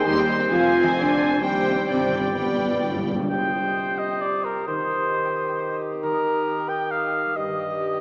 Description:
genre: classical, dramatic, fast romantic movement for symphony orchestra.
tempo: 132 BPM.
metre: 3/4.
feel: straight.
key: C minor.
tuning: A4 = 440 Hz.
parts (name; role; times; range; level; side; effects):
warm symphonic violin section; melody; 0.0-3.1 s; G5 to C6; -34 LUFS; equal; none.
mellow cor anglais; second line; 0.0-8.0 s; Bb4 to Ab5; -28 LUFS; equal; none.
mellow large flute ensemble; second line; 0.0-8.0 s; B4 to Eb6; -36 LUFS; equal; none.
warm clarinet; second line; 0.0-8.0 s; G4 to D5; -32 LUFS; equal; none.
warm symphonic violin section; second line; 0.0-3.1 s; C5 to Eb5; -38 LUFS; equal; none.
dark bassoon; accompaniment; 0.0-8.0 s; G2 to G3; -32 LUFS; equal; none.
rich symphonic viola section; accompaniment; 0.0-3.1 s; G3 to Eb4; -34 LUFS; equal; none.
mellow French horn section; sustained chords; 0.0-7.5 s; G3 to G4; -28 LUFS; equal; none.
concert harp; arpeggios; 0.0-8.0 s; G2 to Eb6; -38 LUFS; equal; none.
dark tuba; bass; 0.1-3.1 s; F1 to Eb2; -32 LUFS; equal; none.
rich studio cello section; bass; 0.1-3.1 s; B2 to G3; -34 LUFS; equal; none.
rich symphonic double bass section; bass; 0.1-3.1 s; Eb2 to G2; -38 LUFS; equal; none.
timpani; percussion; 1.9-3.3 s; G2; -33 LUFS; equal; none.
room: wet scoring stage reverb, RT60 2.0 s.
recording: small speaker sound.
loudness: -23 LUFS.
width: mono.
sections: 0.0-3.3 A section; 3.3-8.0 A section.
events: timpani fill 1.9-3.3.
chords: 0.0 Cm/Eb; 0.5 Fm; 1.4 Cm/Eb; 1.9 G; 3.3 Cm; 4.7 Cm/Eb; 6.0 Eb; 7.4 Eb/G.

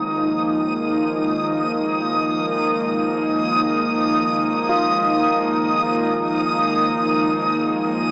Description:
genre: ambient.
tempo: free time.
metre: none.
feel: none.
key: unclear.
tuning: A4 = 440 Hz.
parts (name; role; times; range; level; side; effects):
airy breathy pad; sustained chords; 0.0-8.1 s; Eb3 to Eb4; -20 LUFS; equal; chorus, shimmer reverb.
felt-muted upright piano; arpeggios; 0.0-8.1 s; C4 to F4; -28 LUFS; equal; diffuse ambient delay, shimmer reverb.
analog drone; drone; 0.0-8.1 s; Bb3 to Bb4; -28 LUFS; equal; chorus.
backwards swelling texture; texture; 0.0-8.1 s; Eb6; -22 LUFS; equal; built-in reverb, shimmer reverb.
room: wet huge ambient reverb, RT60 7.6 s.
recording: worn, warbling old tape, cassette tape, warbly pitch drift, small speaker sound.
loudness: -17 LUFS.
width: side -34 dB against mid.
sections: 0.0-8.1 A section.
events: fade-in on felt piano 0.0-8.1; fade-in on synth drone 0.0-8.1.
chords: 0.0 Bbm7.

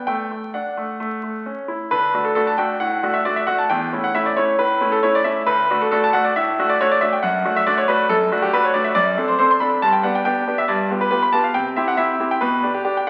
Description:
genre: classical-period piano sonatina.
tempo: 137 BPM.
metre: 4/4.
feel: rubato.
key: D major, G major from 9.0 s.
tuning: A4 = 439 Hz.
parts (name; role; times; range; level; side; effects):
bright grand piano; solo; 0.0-13.1 s; D2 to C6; -19 LUFS; equal; none.
room: wet recital hall reverb, RT60 1.5 s.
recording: very old 78 rpm record, vinyl crackle.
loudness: -19 LUFS.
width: mono.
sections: 0.0-1.9 A section; 1.9-13.1 B section.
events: none.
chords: 0.1 D/A; 1.0 A; 1.9 D; 3.7 A/E; 5.5 D; 7.2 D/F#; 9.0 D7/F#; 9.8 G; 10.7 G7; 11.5 C; 12.4 G/B.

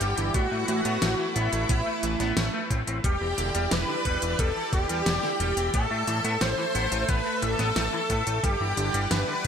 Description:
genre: synthwave.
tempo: 89 BPM.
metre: 4/4.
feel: straight.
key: unclear.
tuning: A4 = 445 Hz.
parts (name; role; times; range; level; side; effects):
wide unison lead; melody; 0.0-9.5 s; E4 to C5; -29 LUFS; equal; ensemble chorus, ping-pong delay.
string machine, violins; second line; 0.0-9.5 s; E4 to C5; -34 LUFS; equal; ensemble chorus.
chorused pulse-width pad; sustained chords; 0.0-9.5 s; G3 to F#5; -34 LUFS; right 2 dB; sidechain pumping.
semi-hollow electric guitar; arpeggios; 0.0-9.5 s; D3 to C4; -33 LUFS; left 2 dB; ensemble chorus, ping-pong delay.
fat analog bass; bass; 0.0-9.5 s; E1 to A2; -29 LUFS; equal; tube saturation, sidechain pumping.
pop drum kit; drums; 0.0-9.5 s; hi-hat, snare drum; -31 LUFS; equal; gated reverb.
electronic kick drum; drums; 0.3-9.5 s; none; -27 LUFS; equal; none.
room: moderate plate reverb, RT60 2.6 s.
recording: bright 1980s-style digital production.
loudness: -23 LUFS.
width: side -7 dB against mid.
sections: 0.0-9.5 A section.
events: none.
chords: 0.3 Asus2; 3.0 Em7; 5.7 Asus2; 8.4 Em7/G.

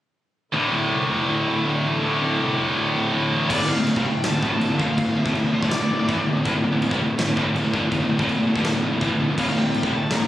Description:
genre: heavy metal.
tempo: 163 BPM.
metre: 4/4.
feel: straight.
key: unclear.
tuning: A4 = 439 Hz.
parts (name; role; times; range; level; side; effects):
dark studio string section; sustained chords; 0.5-3.5, 9.4-10.3 s; D3 to E4; -34 LUFS; right 1 dB; none.
high-gain distorted guitar; riff; 0.5-10.3 s; D2 to G3; -24 LUFS; left 4 dB; distortion.
scooped high-gain guitar; riff; 0.5-10.3 s; D2 to G3; -24 LUFS; right 4 dB; distortion.
fuzz picked electric bass; bass; 0.5-10.3 s; D1 to C2; -27 LUFS; equal; overdrive.
high-gain lead guitar; melody; 3.5-6.2, 9.4-10.3 s; D5 to Bb5; -29 LUFS; left 1 dB; distortion, tape echo.
tight distorted guitar; riff; 3.5-10.3 s; D2 to G3; -32 LUFS; equal; none.
big rock drum kit; drums; 3.5-10.2 s; china cymbal, crash cymbal, kick drum, snare drum; -28 LUFS; equal; none.
room: studio reverb.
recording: recorded on a phone in the room.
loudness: -19 LUFS.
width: side -13 dB against mid.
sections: 0.5-3.5 A section; 3.5-10.3 B section.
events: none.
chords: 0.5 D5.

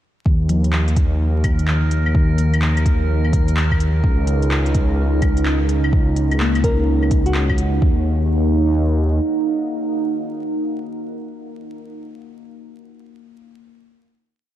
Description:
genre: future garage.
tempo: 127 BPM.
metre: 4/4.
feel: swing 64% on 16ths.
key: Eb minor.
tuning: A4 = 439 Hz.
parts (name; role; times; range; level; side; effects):
swelling detuned saw bass; bass; 0.3-9.2 s; Db2 to Eb2; -18 LUFS; equal; sidechain pumping.
electronic kick drum; drums; 0.3-7.9 s; none; -18 LUFS; equal; none.
drifting glass-harmonics texture; texture; 1.1-7.8 s; Bb4; -32 LUFS; right 3 dB; chorus, built-in reverb.
muted felt-like synth keys; accompaniment; 0.5-14.1 s; Eb3 to Eb4; -27 LUFS; left 3 dB; chorus, sidechain pumping, low-pass filter, diffuse ambient delay.
organic electronic drum kit; drums; 0.5-7.7 s; claves, handclaps, hi-hat; -27 LUFS; left 1 dB; none.
deep dark ambient pad; sustained chords; 3.3-12.0 s; Eb4 to Gb5; -24 LUFS; right 5 dB; chorus, built-in reverb, sidechain pumping.
bell-like FM electric piano; melody; 6.6-7.8 s; Gb4 to Bb4; -27 LUFS; left 2 dB; chorus, diffuse ambient delay.
room: light reverb.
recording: vinyl crackle.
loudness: -16 LUFS.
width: side -12 dB against mid.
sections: 0.3-7.8 groove; 7.8-11.6 final chord.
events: filter sweep on synth keys 0.3-7.8.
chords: 0.3 Ebm; 4.0 Dbsus2; 7.8 Ebm.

